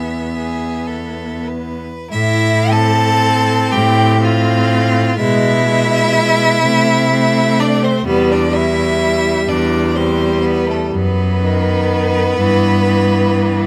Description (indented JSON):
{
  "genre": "classical, slow romantic movement for string quartet",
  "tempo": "31-43 BPM (dotted quarters)",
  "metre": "6/8",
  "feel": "rubato",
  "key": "A minor",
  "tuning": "A4 = 440 Hz",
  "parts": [
    { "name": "clear violin", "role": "melody", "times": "0.0-13.7 s", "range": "A4 to A5", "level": "-21 LUFS", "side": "equal", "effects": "none" },
    { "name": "clear violin", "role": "second line", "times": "0.0-13.7 s", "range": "A3 to B4", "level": "-22 LUFS", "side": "equal", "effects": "none" },
    { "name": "clear viola", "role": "accompaniment", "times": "0.0-13.7 s", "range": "D#3 to C4", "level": "-21 LUFS", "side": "equal", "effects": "none" },
    { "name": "clear cello", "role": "bass", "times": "0.0-13.7 s", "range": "E2 to C3", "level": "-19 LUFS", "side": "equal", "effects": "none" }
  ],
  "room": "little or no reverb",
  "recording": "close, detailed microphones",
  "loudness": "-14 LUFS",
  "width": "mono",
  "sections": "0.0-2.1 A section; 2.1-13.7 B section",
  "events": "none",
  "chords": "0.0 E; 2.1 Am; 5.2 E/B; 6.6 Am/C; 8.1 Em; 10.9 B/F#; 12.4 Em/G"
}